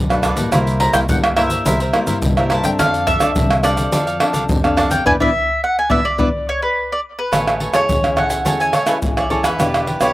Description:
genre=samba and choro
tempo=106 BPM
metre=4/4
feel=straight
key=unclear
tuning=A4 = 440 Hz
part: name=mandolin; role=melody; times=0.0-10.1 s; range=B4 to Bb5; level=-19 LUFS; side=equal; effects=slapback echo
part: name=nylon-string guitar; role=accompaniment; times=0.0-10.1 s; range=F#2 to A4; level=-23 LUFS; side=left 3 dB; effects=none
part: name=upright bass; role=bass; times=0.0-10.1 s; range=E1 to G2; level=-24 LUFS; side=left 1 dB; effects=none
part: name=cavaquinho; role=accompaniment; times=0.1-10.1 s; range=D4 to G#5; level=-23 LUFS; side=right 2 dB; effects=slapback echo
part: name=egg shaker, pandeiro, tamborim and surdo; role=percussion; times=0.1-10.1 s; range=none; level=-18 LUFS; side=right 1 dB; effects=none
room=little or no reverb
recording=recorded outdoors, with no room sound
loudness=-14 LUFS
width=side -16 dB against mid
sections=0.0-7.3 A section; 7.3-10.1 B section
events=band accent 5.1-7.3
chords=0.0 Bm7; 0.5 C7; 2.8 F6; 5.1 E5; 7.3 Amaj7; 9.6 Em7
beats=| 0.52 1.09 1.66 2.23 | 2.79 3.36 3.92 4.49 | 5.06 5.62 6.19 6.76 | 7.33 7.89 8.46 9.03 | 9.60

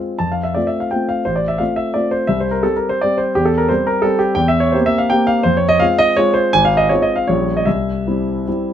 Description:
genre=classical, romantic triple-time dance for piano with dotted rhythms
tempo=142-187 BPM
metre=3/4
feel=rubato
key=F major, F minor from 4.4 s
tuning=A4 = 441 Hz
part: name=warm concert grand piano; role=solo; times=0.0-8.7 s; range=Ab1 to A5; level=-14 LUFS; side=equal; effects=none
room=light reverb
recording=dark, warm production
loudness=-14 LUFS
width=side -10 dB against mid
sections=0.2-8.7 A section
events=none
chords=0.2 F; 1.3 F/A; 2.3 C5; 3.3 C/E; 4.4 C7/E; 5.5 Fm; 6.5 Fm/Ab; 7.3 Gm7b5/Bb; 7.7 C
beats=| 0.21 0.57 0.93 | 1.26 1.60 1.96 | 2.29 2.64 3.00 | 3.35 3.69 4.04 | 4.39 4.75 5.11 | 5.46 5.81 6.18 | 6.54 6.90 7.28 | 7.66 8.07 8.47

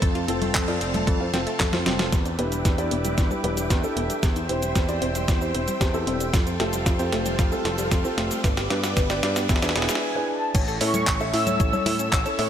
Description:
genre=italo disco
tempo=114 BPM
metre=4/4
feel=straight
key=unclear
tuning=A4 = 440 Hz
part: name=string machine, full ensemble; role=sustained chords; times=0.0-12.5 s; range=C4 to E6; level=-32 LUFS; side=equal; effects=ensemble chorus
part: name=analog pluck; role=arpeggios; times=0.0-12.5 s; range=G3 to C#5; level=-31 LUFS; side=left 2 dB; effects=chorus, phaser, tape echo
part: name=picked electric bass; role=bass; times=0.0-12.5 s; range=E1 to A2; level=-29 LUFS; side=equal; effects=tube saturation
part: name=clean 12-bit digital drum machine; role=drums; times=0.0-12.5 s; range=cabasa, congas, crash cymbal, handclaps, hi-hat, snare drum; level=-28 LUFS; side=equal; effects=high-pass filter on hats, high-pass filter on perc, high-pass filter on snare, high-pass filter on cymbals, high-pass filter on room
part: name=electronic kick drum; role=drums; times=0.0-12.2 s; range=none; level=-23 LUFS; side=equal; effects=none
part: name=dark grand piano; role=stabs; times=0.3-12.5 s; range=B3 to E5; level=-28 LUFS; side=equal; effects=tape echo
part: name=mellow synth brass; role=melody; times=10.0-12.5 s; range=G#5 to E6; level=-27 LUFS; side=equal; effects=chorus, tape echo
room=light reverb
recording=none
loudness=-21 LUFS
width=side -9 dB against mid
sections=0.0-2.1 A section; 2.1-10.5 B section; 10.5-12.5 C section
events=drum fill 1.3-2.1, 2.1-10.0; filter sweep on synth arpeggio sound 2.1-10.5; filter sweep on string machine 2.1-10.5; break 10.0-10.5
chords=0.0 F; 2.1 Em7; 4.2 C/E; 6.3 Fadd9; 8.4 G; 9.5 E7; 10.5 A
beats=| 0.02 0.55 1.07 1.60 | 2.12 2.65 3.18 3.70 | 4.23 4.76 5.28 5.81 | 6.33 6.86 7.39 7.91 | 8.44 8.97 9.49 10.02 | 10.55 11.07 11.60 12.12

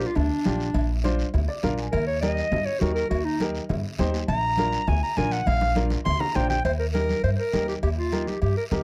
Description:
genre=latin, cumbia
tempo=203 BPM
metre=4/4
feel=straight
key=Eb major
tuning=A4 = 441 Hz
part: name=clear clarinet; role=melody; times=0.0-8.8 s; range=D4 to C6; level=-28 LUFS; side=equal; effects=slapback echo
part: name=warm upright piano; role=accompaniment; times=0.0-8.8 s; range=D4 to Ab5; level=-32 LUFS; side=equal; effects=none
part: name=upright bass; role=bass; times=0.0-8.8 s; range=Bb1 to G2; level=-28 LUFS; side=equal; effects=none
part: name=guiro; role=percussion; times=0.0-8.8 s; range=none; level=-44 LUFS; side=equal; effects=none
part: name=congas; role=percussion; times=0.2-8.8 s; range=none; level=-34 LUFS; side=equal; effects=none
part: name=cowbell and timbales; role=percussion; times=0.2-8.8 s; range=none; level=-41 LUFS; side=equal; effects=none
room=light reverb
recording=dry, close 1970s-style studio recording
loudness=-25 LUFS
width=mono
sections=0.0-6.7 A section; 6.7-8.8 B section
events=clarinet solo 0.0-6.7; upright piano fill 1.3-1.9; drum fill 5.5-6.7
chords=0.0 Bb; 1.9 Eb; 4.3 Bb; 6.7 Eb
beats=0.16 0.46 | 0.75 1.05 1.34 1.64 | 1.93 2.23 2.52 2.82 | 3.11 3.41 3.70 4.00 | 4.29 4.58 4.88 5.17 | 5.47 5.76 6.06 6.36 | 6.65 6.95 7.24 7.54 | 7.83 8.13 8.42 8.72

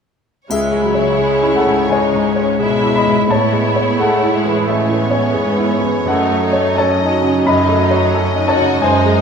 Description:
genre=classical, romantic movement for piano and orchestra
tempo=86 BPM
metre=4/4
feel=rubato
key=C# minor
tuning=A4 = 440 Hz
part: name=clear grand piano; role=melody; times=0.5-9.2 s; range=C#2 to B5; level=-14 LUFS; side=left 1 dB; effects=none
part: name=rich studio violin section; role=melody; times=0.5-9.2 s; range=C#5 to E5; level=-25 LUFS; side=left 2 dB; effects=none
part: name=rich studio violin section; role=second line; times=0.5-9.2 s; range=C#4 to F#4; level=-22 LUFS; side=left 1 dB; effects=none
part: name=rich studio viola section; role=accompaniment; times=0.5-9.2 s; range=F#3 to B3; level=-22 LUFS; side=right 3 dB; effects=none
part: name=warm studio cello section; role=bass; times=0.5-9.2 s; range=F#2 to C#3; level=-21 LUFS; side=right 3 dB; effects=none
part: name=triangle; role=percussion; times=0.5-1.9 s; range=none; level=-32 LUFS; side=left 3 dB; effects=none
room=moderate scoring stage reverb, RT60 1.6 s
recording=minimal, uncompressed stereo recording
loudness=-12 LUFS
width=side -6 dB against mid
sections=0.5-9.2 A section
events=none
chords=0.5 C#m; 3.3 Amaj7; 6.1 D#m7b5/F#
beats=| 0.50 1.20 1.91 2.61 | 3.29 3.99 4.67 5.36 | 6.07 6.77 7.47 8.14 | 8.81

